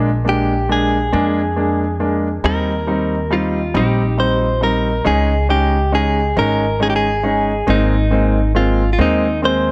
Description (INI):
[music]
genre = six-eight pop ballad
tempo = 46 BPM (dotted quarters)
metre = 6/8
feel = straight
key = unclear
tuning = A4 = 440 Hz
[part]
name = clear grand piano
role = accompaniment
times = 0.0-9.7 s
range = G3 to Eb4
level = -21 LUFS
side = equal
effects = none
[part]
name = upright bass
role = bass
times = 0.0-9.7 s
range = Ab1 to F2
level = -22 LUFS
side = equal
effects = none
[part]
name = direct-recorded clean electric guitar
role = melody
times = 0.3-9.7 s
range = Eb4 to C5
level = -21 LUFS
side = equal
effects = none
[sound]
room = light reverb, small room ambience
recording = none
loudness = -17 LUFS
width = mono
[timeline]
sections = 0.0-5.1 A section; 5.1-9.7 B section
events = none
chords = 0.0 Bb7; 2.4 Eb6; 5.1 Dbsus2; 7.7 Abadd9